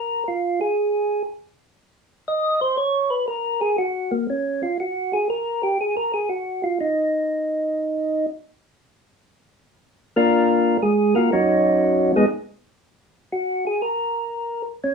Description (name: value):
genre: jazz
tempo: 120 BPM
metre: 4/4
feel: swing 68% on 8ths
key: unclear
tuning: A4 = 440 Hz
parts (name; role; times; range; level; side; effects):
- percussive tonewheel organ; solo; 0.0-14.9 s; Gb3 to Eb5; -19 LUFS; equal; slow rotary speaker
room: moderate studio reverb, RT60 0.5 s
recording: small room ambience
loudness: -19 LUFS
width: side -5 dB against mid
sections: 0.0-14.8 A section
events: tonewheel organ solo 0.0-14.8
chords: 0.0 N.C.; 8.8 Bb; 10.8 Ebm9; 11.8 Abm7; 12.8 N.C.